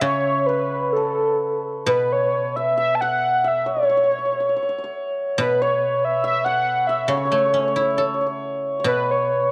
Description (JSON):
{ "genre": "chinese traditional, Chinese chamber ensemble", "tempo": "64-71 BPM", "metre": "2/4", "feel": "rubato", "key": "unclear", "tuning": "A4 = 440 Hz", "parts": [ { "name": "warm velvety synth lead", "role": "melody", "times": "0.0-9.5 s", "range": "A4 to A5", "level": "-22 LUFS", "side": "equal", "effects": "chorus, plate reverb" }, { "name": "hammered dulcimer", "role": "second line", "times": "0.0-9.5 s", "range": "A4 to F#5", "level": "-27 LUFS", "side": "equal", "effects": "plate reverb" }, { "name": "guzheng", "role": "accompaniment", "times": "0.0-9.5 s", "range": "B2 to A4", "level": "-30 LUFS", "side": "equal", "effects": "plate reverb" } ], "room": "wet studio reverb, RT60 0.6 s", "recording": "cassette tape", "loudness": "-21 LUFS", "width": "mono", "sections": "0.0-1.9 A section; 1.9-9.5 B section", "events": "none", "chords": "none" }